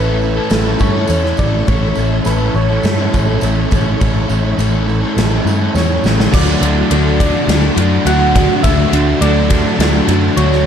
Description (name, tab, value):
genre	rock, shoegaze and dream pop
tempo	103 BPM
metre	4/4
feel	straight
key	D major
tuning	A4 = 440 Hz
part	soft struck synth lead	melody	0.0-10.7 s	B4 to F#5	-22 LUFS	left 1 dB	chorus, digital delay
part	phased string machine	sustained chords	0.0-10.7 s	D4 to E6	-26 LUFS	left 1 dB	ensemble chorus, phaser
part	fingerpicked twelve-string acoustic guitar	arpeggios	0.0-10.7 s	F#4 to C#5	-25 LUFS	right 7 dB	ensemble chorus, digital delay
part	overdriven semi-hollow guitar	riff	0.0-10.7 s	A2 to A4	-19 LUFS	left 11 dB	wide subtle chorus
part	overdriven semi-hollow guitar	riff	0.0-10.7 s	A2 to F#4	-20 LUFS	right 11 dB	reverse reverb
part	vintage muted fingered electric bass	bass	0.0-10.7 s	A1 to G2	-16 LUFS	equal	none
part	tambourine	percussion	0.2-6.2 s	none	-37 LUFS	right 10 dB	none
part	gated 80s drum kit	drums	0.5-10.6 s	crash cymbal, kick drum, ride cymbal, snare drum	-18 LUFS	equal	none
part	sludgy distorted guitar	riff	6.3-10.7 s	D3 to D4	-20 LUFS	equal	overdrive
room	small room ambience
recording	dark, warm production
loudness	-11 LUFS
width	side -8 dB against mid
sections	0.0-6.3 A section; 6.3-10.7 B section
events	drum fill 5.7-6.3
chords	0.0 Aadd9; 6.3 D